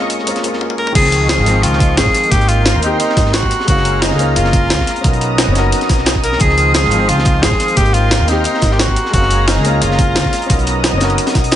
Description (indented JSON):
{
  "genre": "liquid drum and bass",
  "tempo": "176 BPM",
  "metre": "4/4",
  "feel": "straight",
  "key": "Db major",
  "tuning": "A4 = 440 Hz",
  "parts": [
    { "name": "warm grand piano", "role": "accompaniment", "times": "0.0-11.6 s", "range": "Eb3 to F5", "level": "-20 LUFS", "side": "left 1 dB", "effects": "none" },
    { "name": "lush unison pad", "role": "sustained chords", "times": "0.0-11.6 s", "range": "Cb4 to Eb6", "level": "-22 LUFS", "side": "right 1 dB", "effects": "chorus, sidechain pumping" },
    { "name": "upright bass", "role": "bass", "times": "0.0-11.6 s", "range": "Gb1 to Eb2", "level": "-16 LUFS", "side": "equal", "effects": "high-pass filter" },
    { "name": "crunchy breakbeat drum kit", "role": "drums", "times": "0.1-11.6 s", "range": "hi-hat, snare drum", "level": "-24 LUFS", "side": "equal", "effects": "high-pass filter on hats, studio reverb, high-pass filter on snare, high-pass filter on room" },
    { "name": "jungle sampler-style drum kit", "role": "drums", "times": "0.1-11.6 s", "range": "crash cymbal, hi-hat, snare drum, toms", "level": "-18 LUFS", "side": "equal", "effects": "high-pass filter on hats, studio reverb, high-pass filter on toms, high-pass filter on cymbals, high-pass filter on snare" },
    { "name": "bright tenor saxophone", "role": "melody", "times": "0.8-10.8 s", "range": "Eb4 to Bb4", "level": "-17 LUFS", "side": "equal", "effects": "ping-pong delay" },
    { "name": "electronic kick drum", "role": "drums", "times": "1.0-11.4 s", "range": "none", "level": "-16 LUFS", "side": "equal", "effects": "overdrive, studio reverb" }
  ],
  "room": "light reverb, studio ambience",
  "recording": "nothing above 10.6 kHz",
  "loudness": "-11 LUFS",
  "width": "side -11 dB against mid",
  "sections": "1.0-11.6 A section",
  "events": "drum fill 0.6-1.0; drop 1.0-11.6",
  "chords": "0.0 Cbmaj9; 1.0 Dbmaj9; 2.3 Abmaj9; 3.5 Gbmaj9; 4.9 Cbmaj9; 6.4 Dbmaj9; 7.8 Abmaj9; 9.0 Gbmaj9; 10.3 Cbmaj9"
}